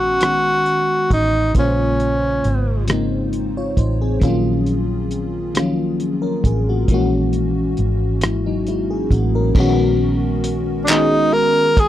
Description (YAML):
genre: slow six-eight R&B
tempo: 45 BPM (dotted quarters)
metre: 6/8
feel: straight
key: unclear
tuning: A4 = 440 Hz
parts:
  - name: breathy tenor saxophone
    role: melody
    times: 0.0-2.9, 10.8-11.9 s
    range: Db4 to Bb4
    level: -16 LUFS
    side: right 1 dB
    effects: none
  - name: FM electric piano with soft pad layer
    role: accompaniment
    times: 0.0-11.9 s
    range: Db3 to Db5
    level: -20 LUFS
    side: left 2 dB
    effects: chorus
  - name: vintage muted fingered electric bass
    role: bass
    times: 0.0-11.9 s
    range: Ab1 to Bb1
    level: -21 LUFS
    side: equal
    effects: none
  - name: cloth-damped thuddy drum kit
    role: drums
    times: 0.2-11.9 s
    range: crash cymbal, handclaps, hi-hat, kick drum, rim click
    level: -17 LUFS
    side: equal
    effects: none
room: little or no reverb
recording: dry, close 1970s-style studio recording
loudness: -15 LUFS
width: side -12 dB against mid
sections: 0.0-9.5 A section; 9.5-11.9 B section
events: none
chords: 0.0 B69/Bb; 1.5 Bbm9; 4.2 Ebm7/Bb; 6.9 Gb9; 9.5 B69/Bb